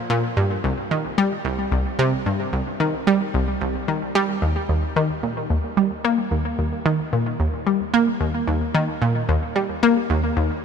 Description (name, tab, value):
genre	ambient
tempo	111 BPM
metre	4/4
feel	straight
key	Eb major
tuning	A4 = 440 Hz
part	analog pluck	solo	0.1-10.5 s	C2 to Bb3	-19 LUFS	equal	chorus, analog delay
room	moderate huge ambient reverb, RT60 7.9 s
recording	none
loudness	-19 LUFS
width	side -6 dB against mid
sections	0.0-4.7 A section; 4.7-10.6 B section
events	none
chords	none